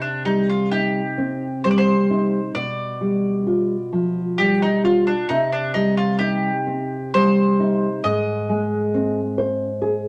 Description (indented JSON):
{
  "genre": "romantic duo for mandolin and classical guitar",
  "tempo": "66 BPM",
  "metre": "3/4",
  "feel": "rubato",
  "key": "C minor",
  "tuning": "A4 = 445 Hz",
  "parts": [
    { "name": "bowl-back mandolin", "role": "melody", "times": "0.0-9.3 s", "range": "D4 to Eb5", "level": "-26 LUFS", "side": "equal", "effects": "none" },
    { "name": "nylon-string guitar", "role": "accompaniment", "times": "0.0-10.1 s", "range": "Ab2 to C5", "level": "-22 LUFS", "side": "equal", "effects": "none" }
  ],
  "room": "wet studio reverb, RT60 0.8 s",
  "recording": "none",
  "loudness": "-20 LUFS",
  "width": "mono",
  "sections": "0.0-10.1 A section",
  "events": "none",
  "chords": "0.0 Cm; 2.6 G7/B; 5.3 Cm; 8.0 Ab",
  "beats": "0.72 1.65 | 2.56 3.47 4.39 | 5.30 6.20 7.14 | 8.04 8.93 9.81"
}